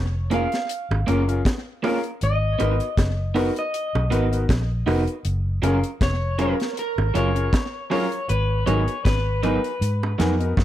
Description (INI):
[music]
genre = lovers rock reggae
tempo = 79 BPM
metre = 4/4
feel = swing 55% on 16ths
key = F# major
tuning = A4 = 440 Hz
[part]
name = electric guitar through a small old amp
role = melody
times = 0.0-10.6 s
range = A#4 to E#5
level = -28 LUFS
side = left 1 dB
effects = tape echo
[part]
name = vintage muted fingered electric bass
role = bass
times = 0.0-10.6 s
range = E#1 to G#2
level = -22 LUFS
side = equal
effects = none
[part]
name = warm grand piano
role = accompaniment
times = 0.3-10.5 s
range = B3 to A#4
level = -26 LUFS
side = left 4 dB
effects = none
[part]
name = electric guitar through a small old amp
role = stabs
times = 0.3-10.3 s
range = F#3 to B4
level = -26 LUFS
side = right 4 dB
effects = slapback echo
[part]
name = deep reggae drum kit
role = drums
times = 0.3-10.6 s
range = hi-hat, kick drum, snare drum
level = -24 LUFS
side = equal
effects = slapback echo
[part]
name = bongos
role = percussion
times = 0.3-10.6 s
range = none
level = -32 LUFS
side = right 6 dB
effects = none
[sound]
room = small room ambience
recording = dry, close 1970s-style studio recording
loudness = -20 LUFS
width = side -12 dB against mid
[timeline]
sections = 0.0-10.6 A section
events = none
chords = 0.0 F#maj7; 2.2 G#m7; 5.3 F#maj7; 8.3 G#m7